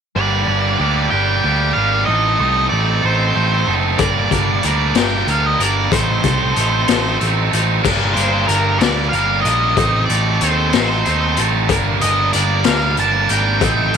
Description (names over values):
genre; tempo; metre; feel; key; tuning
indie rock; 62 BPM (dotted quarters); 6/8; straight; G minor; A4 = 437 Hz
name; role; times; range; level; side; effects
octave-fuzz lead guitar; melody; 0.2-14.0 s; Bb4 to A5; -20 LUFS; equal; distortion
high-gain distorted guitar; riff; 0.2-13.9 s; G2 to Bb4; -18 LUFS; right 2 dB; distortion
growling picked electric bass; bass; 0.2-14.0 s; F#1 to Eb2; -20 LUFS; right 1 dB; overdrive
raw garage drum kit; drums; 4.0-14.0 s; crash cymbal, hi-hat, kick drum, snare drum; -19 LUFS; left 7 dB; none
room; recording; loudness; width
light reverb, small room ambience; 1960s-style stereo; -13 LUFS; side -7 dB against mid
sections
0.2-7.8 A section; 7.8-14.0 B section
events
none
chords
0.2 Gm; 2.1 Adim; 4.0 Gm; 5.9 Adim; 7.8 Gm; 9.8 Adim; 11.7 Gm